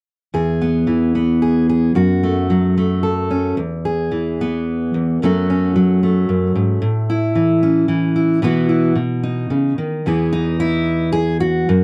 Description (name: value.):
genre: folk, solo fingerstyle acoustic guitar.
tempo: 111 BPM.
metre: 3/4.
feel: rubato.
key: E major.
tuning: A4 = 439 Hz.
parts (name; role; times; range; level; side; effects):
fingerpicked steel-string acoustic guitar; solo; 0.3-11.8 s; E2 to A4; -17 LUFS; equal; none.
room: light reverb.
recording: dry, close 1970s-style studio recording.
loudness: -17 LUFS.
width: mono.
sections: 0.3-3.6 A section; 3.6-10.1 B section; 10.1-11.8 C section.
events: none.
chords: 0.3 E; 2.0 F#m; 3.6 E; 5.2 F#m; 6.8 A; 8.4 Bsus4; 9.0 B; 10.1 E.